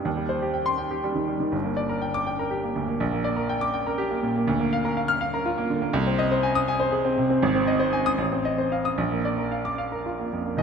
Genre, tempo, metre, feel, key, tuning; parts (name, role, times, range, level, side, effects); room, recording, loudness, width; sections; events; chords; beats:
classical, virtuoso piano study; 81 BPM (dotted quarters); 6/8; rubato; A4 = 440 Hz
clear baby grand piano; solo; 0.0-10.6 s; Eb1 to F6; -22 LUFS; equal
wet concert hall reverb, RT60 2.2 s; -22 LUFS; side -6 dB against mid
0.0-10.6 A section
0.1 Cm/Eb; 1.5 Gm; 3.0 Gm/Bb; 4.5 Bb/D; 5.9 Ab/C; 7.4 Ab; 8.2 F7/A; 9.0 Bb
| 0.06 0.79 | 1.53 2.27 | 3.00 3.74 | 4.48 5.21 | 5.94 6.67 | 7.42 8.19 | 8.98 9.78 | 10.58